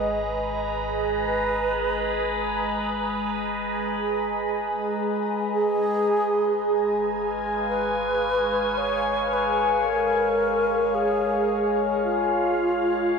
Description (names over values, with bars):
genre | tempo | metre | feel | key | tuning
ambient | free time | none | none | unclear | A4 = 440 Hz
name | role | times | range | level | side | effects
mellow wooden-headed alto flute | melody | 0.0-13.2 s | E#4 to D#5 | -25 LUFS | right 1 dB | shimmer reverb, ping-pong delay
evolving wavetable pad | sustained chords | 0.0-13.2 s | G#3 to A#5 | -24 LUFS | left 1 dB | phaser, built-in reverb, shimmer reverb
deep rumbling drone | bass | 0.0-13.2 s | G#1 | -42 LUFS | equal | built-in reverb
room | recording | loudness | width
wet cathedral reverb, RT60 5.1 s | none | -22 LUFS | side -5 dB against mid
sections
0.0-13.2 A section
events
fade-out on synth drone 0.0-13.2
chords
0.0 G#madd9; 5.5 C#/G#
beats
free time